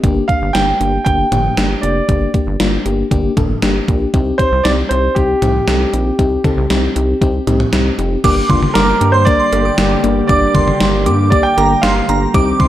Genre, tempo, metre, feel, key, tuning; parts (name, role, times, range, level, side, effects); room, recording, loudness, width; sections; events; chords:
synth-pop; 117 BPM; 4/4; straight; G minor; A4 = 440 Hz
FM electric piano with tremolo; accompaniment; 0.0-12.7 s; Bb3 to Bb4; -18 LUFS; left 4 dB
rubbery square bass; bass; 0.0-12.7 s; F1 to G2; -18 LUFS; right 1 dB
gated 80s digital drum machine; drums; 0.0-12.7 s; cowbell, crash cymbal, hi-hat, kick drum, snare drum, toms; -17 LUFS; right 1 dB; gated reverb, gated reverb snare, overdrive
warm concert grand piano; melody; 0.3-12.2 s; G4 to G5; -17 LUFS; right 1 dB; slapback echo
shimmering bell with halo; second line; 8.2-12.7 s; Bb5 to D6; -19 LUFS; right 2 dB; ensemble chorus, slapback echo
warm analog pad; sustained chords; 8.2-12.7 s; D3 to G4; -21 LUFS; right 1 dB; wide subtle chorus
moderate plate reverb, RT60 1.9 s; dark, warm production; -12 LUFS; side -13 dB against mid
0.0-8.2 A section; 8.2-12.7 B section
0.0 Gm; 4.1 Cm; 8.2 Gm